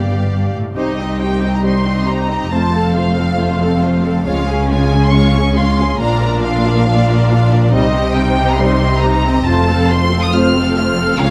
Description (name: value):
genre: cinematic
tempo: 138 BPM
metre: 4/4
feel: straight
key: C dorian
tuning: A4 = 440 Hz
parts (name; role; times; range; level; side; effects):
- rich symphonic violin section; melody; 0.0-11.3 s; Eb5 to F6; -23 LUFS; equal; none
- clear symphonic violin section; second line; 0.0-11.3 s; Eb4 to Ab5; -26 LUFS; equal; none
- rich symphonic viola section; accompaniment; 0.0-11.3 s; G3 to A4; -23 LUFS; equal; none
- mellow French horn section; sustained chords; 0.0-11.3 s; F3 to D4; -25 LUFS; equal; none
- clear symphonic double bass section; bass; 0.0-11.3 s; F1 to Db2; -20 LUFS; equal; none
- rich symphonic cello section; bass; 0.0-11.3 s; C2 to Db3; -20 LUFS; equal; none
room: wet scoring stage reverb, RT60 1.6 s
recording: none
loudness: -14 LUFS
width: mono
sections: 0.8-11.3 A section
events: none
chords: 0.0 G7; 0.8 Cm; 2.5 F; 4.3 Db; 6.0 Bb; 7.7 Cm; 9.5 F